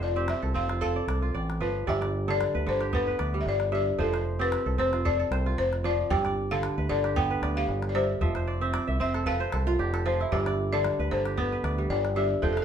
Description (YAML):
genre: west african traditional, West African string and xylophone music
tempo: 114 BPM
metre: 4/4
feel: swing 54% on 16ths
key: G mixolydian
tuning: A4 = 438 Hz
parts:
  - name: balafon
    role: melody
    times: 0.0-12.6 s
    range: A4 to G5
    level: -29 LUFS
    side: left 3 dB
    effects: none
  - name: kora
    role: arpeggios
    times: 0.0-12.6 s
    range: G2 to G5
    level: -30 LUFS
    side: right 4 dB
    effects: none
  - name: fingered electric bass with an envelope filter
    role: bass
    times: 0.0-12.6 s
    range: F1 to D2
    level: -30 LUFS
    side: equal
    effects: none
  - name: calabash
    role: percussion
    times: 0.0-12.6 s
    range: none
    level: -34 LUFS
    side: left 1 dB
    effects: none
room: wet studio reverb, RT60 0.6 s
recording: band playing live in one room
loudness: -25 LUFS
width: side -8 dB against mid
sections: 0.0-1.9 A section; 1.9-12.6 B section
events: balafon solo 0.0-1.9; kora fill 8.2-10.3, 12.4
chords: 0.0 F; 1.9 G; 4.0 F; 6.1 G; 8.2 F; 10.3 G